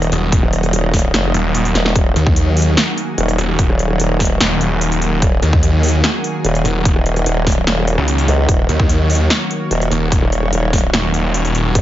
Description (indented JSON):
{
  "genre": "heavy wobble dubstep",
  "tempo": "147 BPM",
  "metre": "4/4",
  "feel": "half-time",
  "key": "Eb minor",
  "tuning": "A4 = 441 Hz",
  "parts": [
    { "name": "lush unison pad", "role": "sustained chords", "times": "0.0-11.8 s", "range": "Eb3 to Eb5", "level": "-22 LUFS", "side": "right 1 dB", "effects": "chorus, vintage 12-bit sampler grit, sidechain pumping" },
    { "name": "formant-sweep wobble bass", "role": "bass", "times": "0.0-11.8 s", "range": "Eb1 to Db2", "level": "-16 LUFS", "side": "equal", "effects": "chorus, overdrive" },
    { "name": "big-room dance drum kit", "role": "drums", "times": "0.0-11.8 s", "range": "hi-hat, snare drum", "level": "-19 LUFS", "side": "equal", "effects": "none" },
    { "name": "snarling distorted saw bass", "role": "bass", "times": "0.1-11.7 s", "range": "Eb1 to Eb2", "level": "-15 LUFS", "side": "equal", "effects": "distortion, overdrive" },
    { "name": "electronic kick drum", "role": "drums", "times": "0.3-11.8 s", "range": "none", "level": "-15 LUFS", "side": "equal", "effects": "none" },
    { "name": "zap", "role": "sound effects", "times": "8.3-8.4 s", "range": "none", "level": "-27 LUFS", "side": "right 2 dB", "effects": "none" }
  ],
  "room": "little or no reverb",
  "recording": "nothing above 7.6 kHz",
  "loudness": "-13 LUFS",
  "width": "side -13 dB against mid",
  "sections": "0.0-11.8 A section",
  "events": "drum fill 1.8",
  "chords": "0.0 Ebm"
}